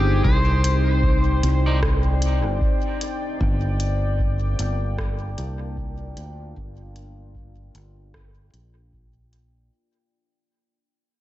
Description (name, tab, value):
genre	ambient dub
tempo	76 BPM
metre	4/4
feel	swing 59% on 16ths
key	unclear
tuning	A4 = 441 Hz
part	overdriven slide guitar	melody	0.0-1.8 s	G4 to C5	-28 LUFS	left 1 dB	dub echo
part	deep dark ambient pad	sustained chords	0.0-9.7 s	Bb3 to G5	-29 LUFS	left 2 dB	chorus, built-in reverb
part	fingered electric bass	bass	0.0-9.7 s	G1 to D2	-22 LUFS	equal	none
part	electronic kick drum	drums	0.2-9.1 s	none	-24 LUFS	equal	none
part	organic electronic drum kit	drums	0.6-9.5 s	hi-hat, rim click	-34 LUFS	right 1 dB	dub echo
part	electric guitar at the edge of break-up	stabs	1.7-1.8 s	C4 to D5	-35 LUFS	right 1 dB	dub echo
room	light reverb, digital ambience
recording	nothing above 8.0 kHz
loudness	-19 LUFS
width	side -15 dB against mid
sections	0.0-9.7 A section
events	fade-out 0.0-9.7; filter sweep on fingered electric bass 0.0-9.7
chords	0.0 Cmadd9; 3.4 Gm7